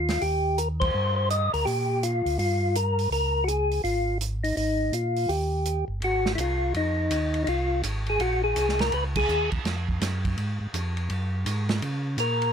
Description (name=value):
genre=soul jazz organ trio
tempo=165 BPM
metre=4/4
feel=swing 64% on 8ths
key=Ab major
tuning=A4 = 440 Hz
part: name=percussive tonewheel organ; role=melody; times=0.0-9.5, 12.2-12.5 s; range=Eb4 to Eb5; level=-25 LUFS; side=left 1 dB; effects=slow rotary speaker
part: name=mellow tonewheel organ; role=bass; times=0.0-12.5 s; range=G1 to Db3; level=-28 LUFS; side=equal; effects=slow rotary speaker
part: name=warm soul drum kit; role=drums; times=0.1-12.5 s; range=crash cymbal, hi-hat, kick drum, ride cymbal, snare drum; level=-32 LUFS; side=right 3 dB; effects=none
room=little or no reverb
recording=close, detailed microphones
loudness=-23 LUFS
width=side -7 dB against mid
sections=0.0-6.0 A section; 6.0-12.5 A section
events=band accent 0.8, 9.1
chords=0.2 Eb69; 3.1 Db; 4.6 Absus2; 5.3 Eb; 6.0 Ab69; 8.9 Dbadd9; 10.4 Fm; 11.8 Db5